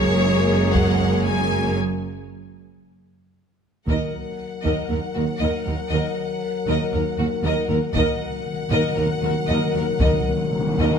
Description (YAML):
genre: cinematic, epic orchestral film score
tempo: 116 BPM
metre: 4/4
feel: straight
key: Eb minor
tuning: A4 = 440 Hz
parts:
  - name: rich symphonic violin section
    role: melody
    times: 0.0-11.0 s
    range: Db5 to Ab5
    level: -30 LUFS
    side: left 3 dB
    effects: none
  - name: rich symphonic violin section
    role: second line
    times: 0.0-11.0 s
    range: Gb4 to Eb5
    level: -29 LUFS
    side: left 3 dB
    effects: none
  - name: dark symphonic viola section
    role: accompaniment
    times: 0.0-11.0 s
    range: Bb3 to Bb4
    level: -28 LUFS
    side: equal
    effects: none
  - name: mellow French horn section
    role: sustained chords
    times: 0.0-11.0 s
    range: Gb3 to Bb4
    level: -27 LUFS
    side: left 5 dB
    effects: none
  - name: clear studio double bass section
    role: bass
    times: 0.0-10.9 s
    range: Gb1 to Eb2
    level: -28 LUFS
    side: right 3 dB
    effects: none
  - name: rich symphonic cello section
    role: bass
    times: 0.0-10.9 s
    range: Eb2 to Gb2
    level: -26 LUFS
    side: right 2 dB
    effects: none
  - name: taiko ensemble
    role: drums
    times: 0.8-10.5 s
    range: none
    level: -26 LUFS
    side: equal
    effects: none
  - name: mellow tuba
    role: bass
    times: 3.9-10.9 s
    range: Eb2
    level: -27 LUFS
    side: right 5 dB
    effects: none
  - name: timpani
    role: percussion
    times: 3.9-4.6, 8.0-11.0 s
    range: Eb3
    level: -27 LUFS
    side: left 1 dB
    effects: none
  - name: cymbal swell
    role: sound effects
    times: 10.5-11.0 s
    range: none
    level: -39 LUFS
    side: left 1 dB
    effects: none
room: moderate scoring stage reverb, RT60 1.9 s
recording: none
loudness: -19 LUFS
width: side -7 dB against mid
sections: 0.0-3.9 A section; 3.9-11.0 B section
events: break 1.8-3.9; drum fill 3.1-3.9; timpani fill 8.0-11.0; cymbal swell 10.5-11.0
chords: 0.0 Gbadd9; 1.8 N.C.; 3.9 Ebm